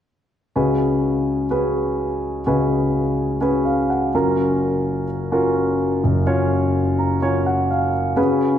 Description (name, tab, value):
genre	pop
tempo	126 BPM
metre	4/4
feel	swing 56% on 16ths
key	Db mixolydian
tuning	A4 = 439 Hz
part	dark grand piano	accompaniment	0.6-8.6 s	Gb1 to Bb5	-17 LUFS	equal	none
room	wet scoring stage reverb, RT60 1.8 s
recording	none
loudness	-17 LUFS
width	side -10 dB against mid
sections	0.6-8.2 A section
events	grand piano fill 3.4-4.4, 6.7-8.2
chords	0.6 Db7sus4; 4.1 Gbmaj7